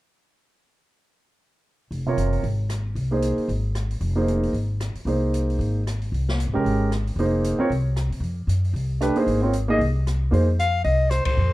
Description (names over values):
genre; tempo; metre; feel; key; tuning
modal jazz; 228 BPM; 4/4; swing 58% on 8ths; F phrygian; A4 = 440 Hz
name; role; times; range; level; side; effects
upright bass; bass; 1.9-11.5 s; F1 to C3; -23 LUFS; equal; none
open jazz drum kit; drums; 1.9-11.3 s; hi-hat, kick drum, ride cymbal, rim click, snare drum; -34 LUFS; left 1 dB; none
warm grand piano; accompaniment; 2.1-10.5 s; C3 to Eb5; -23 LUFS; right 2 dB; none
breathy soprano saxophone; melody; 10.6-11.5 s; C5 to F5; -22 LUFS; left 2 dB; none
room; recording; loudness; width
light reverb; dark, warm production; -20 LUFS; side -17 dB against mid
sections
1.9-10.3 A section; 10.3-11.5 B section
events
band accent 11.2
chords
1.9 Fm7; 10.3 F7(no3)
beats
| 1.91 2.18 2.44 2.70 | 2.97 3.23 3.49 3.76 | 4.02 4.28 4.55 4.81 | 5.07 5.33 5.60 5.86 | 6.12 6.38 6.65 6.91 | 7.17 7.43 7.70 7.96 | 8.22 8.48 8.75 9.01 | 9.27 9.53 9.80 10.06 | 10.32 10.58 10.85 11.11 | 11.37